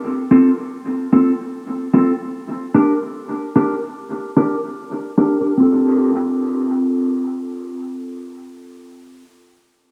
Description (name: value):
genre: reggae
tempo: 74 BPM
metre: 4/4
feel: swing 56% on 16ths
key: F major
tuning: A4 = 440 Hz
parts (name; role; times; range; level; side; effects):
- mellow electric guitar; accompaniment; 0.3-9.3 s; C4 to Bb4; -18 LUFS; equal; lush chorus, low-pass filter, dub echo
room: moderate spring reverb, RT60 2.7 s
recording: echo-heavy mix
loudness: -18 LUFS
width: mono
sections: 0.0-5.6 A section; 5.6-8.8 B section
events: filter sweep on clean electric guitar 0.0-5.6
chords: 0.0 F; 2.3 Gm; 5.6 F